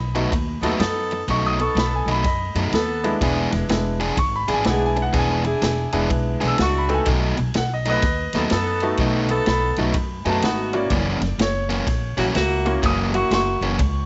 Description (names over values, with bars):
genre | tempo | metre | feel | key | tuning
electric blues shuffle | 125 BPM | 4/4 | swing 64% on 8ths | B mixolydian | A4 = 441 Hz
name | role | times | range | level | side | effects
clear grand piano | accompaniment | 0.0-14.1 s | G#3 to E6 | -27 LUFS | equal | none
upright bass | bass | 0.0-14.0 s | E1 to F#2 | -27 LUFS | equal | none
overdriven electric guitar | riff | 0.2-13.8 s | F#2 to G#4 | -28 LUFS | equal | none
vintage drum kit | drums | 0.2-13.9 s | kick drum, ride cymbal, snare drum | -28 LUFS | equal | none
clear saxophone section | stabs | 0.6-13.7 s | A#3 to A4 | -27 LUFS | equal | none
room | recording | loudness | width
light reverb, small room reverb | nothing above 7.8 kHz | -21 LUFS | mono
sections
0.0-14.1 A section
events
none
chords
0.0 B7; 3.2 E7; 7.1 B7; 10.9 F#7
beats
0.33 0.81 | 1.29 1.77 2.25 2.73 | 3.21 3.70 4.18 4.66 | 5.14 5.62 6.10 6.58 | 7.07 7.55 8.03 8.51 | 8.99 9.47 9.95 10.43 | 10.91 11.39 11.87 12.35 | 12.83 13.31 13.79